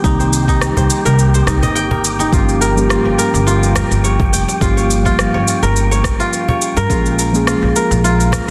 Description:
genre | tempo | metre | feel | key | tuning
organic downtempo | 105 BPM | 4/4 | swing 54% on 16ths | unclear | A4 = 441 Hz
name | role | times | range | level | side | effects
muted felt-like synth keys | accompaniment | 0.0-8.5 s | Eb3 to Ab4 | -21 LUFS | equal | chorus, sidechain pumping, delay
kora | arpeggios | 0.0-8.5 s | Eb4 to G5 | -21 LUFS | equal | delay
upright bass | bass | 0.0-8.5 s | F1 to G2 | -19 LUFS | equal | none
electronic kick drum | drums | 0.0-7.0 s | none | -20 LUFS | equal | none
electronic shaker and rim click | drums | 0.0-8.5 s | none | -24 LUFS | equal | soft clipping on snare
wind-like tuned noise texture | texture | 0.0-8.5 s | G4 to G5 | -28 LUFS | equal | built-in reverb
cajon | percussion | 0.8-8.5 s | none | -24 LUFS | equal | none
room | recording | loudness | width
moderate lush hall reverb, RT60 2.1 s | dense, heavily limited modern master | -14 LUFS | mono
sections
0.0-8.5 A section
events
none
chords
0.0 Cm7; 2.3 Gm7b5; 6.9 Bbm7

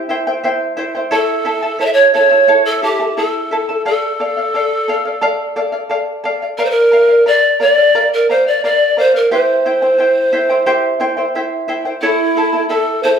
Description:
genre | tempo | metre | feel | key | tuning
andean folk, Andean ensemble | 88 BPM | 4/4 | straight | D minor | A4 = 440 Hz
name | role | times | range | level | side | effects
charango | accompaniment | 0.0-13.2 s | E4 to A5 | -17 LUFS | equal | none
breathy pan flute | melody | 1.1-13.2 s | E4 to E5 | -12 LUFS | right 1 dB | none
room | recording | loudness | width
wet large studio reverb, RT60 1.0 s | band playing live in one room | -12 LUFS | side -7 dB against mid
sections
0.0-13.2 A section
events
none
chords
0.0 C; 1.1 A; 3.9 Dm; 6.6 Bb; 9.3 C; 12.0 A

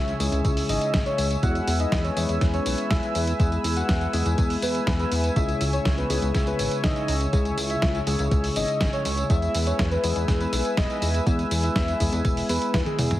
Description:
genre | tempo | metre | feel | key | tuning
italo disco | 122 BPM | 4/4 | straight | unclear | A4 = 441 Hz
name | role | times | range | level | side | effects
soft octave-layered synth lead | melody | 0.0-13.2 s | G#4 to F#5 | -29 LUFS | left 1 dB | chorus, phaser, ping-pong delay
warm analog pad | sustained chords | 0.0-13.2 s | B4 to E6 | -31 LUFS | right 1 dB | chorus
bright tine electric piano | stabs | 0.0-13.2 s | C#3 to G#4 | -29 LUFS | left 2 dB | none
chorused synth bass | bass | 0.0-13.2 s | E1 to E2 | -26 LUFS | equal | tube saturation
dusty soul sampler-style drum kit | drums | 0.1-13.2 s | hi-hat, snare drum, tambourine, toms | -30 LUFS | equal | none
electronic kick drum | drums | 0.4-12.8 s | none | -25 LUFS | equal | none
room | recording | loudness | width
light reverb | heavily compressed radio sound, multiband compression, vinyl crackle | -21 LUFS | side -14 dB against mid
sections
0.0-13.2 A section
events
drum fill 12.7-13.2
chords
0.0 C#m; 1.4 E; 5.4 C#m; 9.3 E

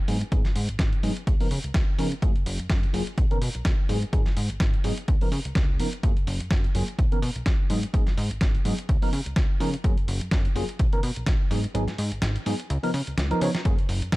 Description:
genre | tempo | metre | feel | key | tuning
filtered disco house | 126 BPM | 4/4 | swing 56% on 16ths | unclear | A4 = 440 Hz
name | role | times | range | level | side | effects
tine electric piano | accompaniment | 0.1-13.7 s | D#3 to C#5 | -30 LUFS | equal | phaser, sidechain pumping, low-pass filter
plucky analog bass | bass | 0.1-14.2 s | F#1 to C#3 | -29 LUFS | equal | sidechain pumping, low-pass filter
dusty soul sampler-style drum kit | drums | 0.1-14.2 s | hi-hat, snare drum | -32 LUFS | equal | sidechain pumping on hats
electronic kick drum | drums | 0.3-14.2 s | none | -23 LUFS | equal | overdrive
room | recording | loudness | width
little or no reverb | dark, warm production | -22 LUFS | side -20 dB against mid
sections
0.0-14.2 A section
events
filter sweep 0.0-14.2; kick drops out 11.7-13.7; drum fill 13.2-13.7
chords
0.1 G#m7; 1.3 C#13; 2.2 N.C.; 3.9 G#m7; 5.1 C#13; 6.0 N.C.; 7.7 G#m7; 8.9 C#13; 9.8 N.C.; 11.5 G#m7; 12.7 C#13; 13.7 N.C.

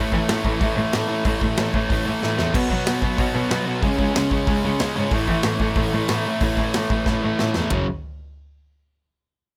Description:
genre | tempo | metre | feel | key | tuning
punk rock | 186 BPM | 4/4 | straight | F# minor | A4 = 440 Hz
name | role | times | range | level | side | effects
raw garage guitar | riff | 0.0-7.8 s | F#2 to C#4 | -28 LUFS | equal | overdrive
sludgy distorted guitar | riff | 0.0-7.9 s | F#2 to C#4 | -27 LUFS | equal | overdrive
rich cello | bass | 0.0-7.8 s | C#2 to F#3 | -28 LUFS | equal | none
big rock drum kit | drums | 0.1-7.8 s | crash cymbal, hi-hat, kick drum, ride cymbal, snare drum, toms | -27 LUFS | equal | none
room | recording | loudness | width
little or no reverb | none | -21 LUFS | mono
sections
0.0-7.7 A section; 7.7-9.0 B section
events
drum fill 2.2-2.5, 7.1-7.7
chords
0.0 A5; 2.5 B5; 3.8 C#5; 5.1 A5; 7.7 F#5

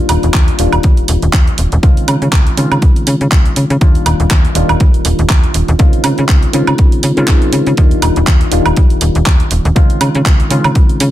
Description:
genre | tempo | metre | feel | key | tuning
filtered disco house | 121 BPM | 4/4 | swing 56% on 16ths | Eb major | A4 = 439 Hz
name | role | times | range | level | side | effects
barky reed electric piano | accompaniment | 0.0-11.1 s | Eb3 to F4 | -17 LUFS | left 1 dB | overdrive, phaser, sidechain pumping, low-pass filter
slap-like FM bass | bass | 0.1-11.1 s | Eb1 to Db3 | -14 LUFS | equal | sidechain pumping, low-pass filter
house drum kit | drums | 0.1-11.1 s | handclaps, hi-hat, woodblock | -18 LUFS | right 3 dB | sidechain pumping on hats, sidechain pumping on perc
electronic kick drum | drums | 0.3-10.9 s | none | -9 LUFS | equal | none
room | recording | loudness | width
digital ambience | dense, heavily limited modern master | -9 LUFS | side -13 dB against mid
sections
0.0-11.1 A section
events
filter sweep 0.0-11.1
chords
0.0 Ebmaj7; 1.8 Dbmaj7; 3.8 Ebmaj7; 5.8 Dbmaj7; 7.8 Ebmaj7; 9.8 Dbmaj7

